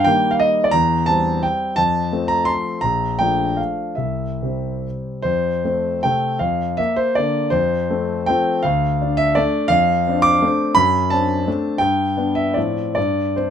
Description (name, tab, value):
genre	classical, romantic triple-time dance for piano with dotted rhythms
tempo	133-185 BPM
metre	3/4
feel	rubato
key	F major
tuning	A4 = 439 Hz
part	warm concert grand piano	solo	0.0-13.5 s	Bb1 to D6	-16 LUFS	equal	none
room	light reverb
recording	close, detailed microphones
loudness	-16 LUFS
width	side -8 dB against mid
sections	0.0-5.2 A section; 5.2-13.5 B section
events	none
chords	0.0 Eb/G; 0.7 C7/E; 1.8 F; 2.8 Bbmaj7; 4.0 C; 5.2 F; 6.4 Bb/F; 7.5 F; 8.6 Dm; 9.7 Dm7/F; 10.8 D7/F#; 11.8 G; 12.6 F/A; 13.0 Gsus4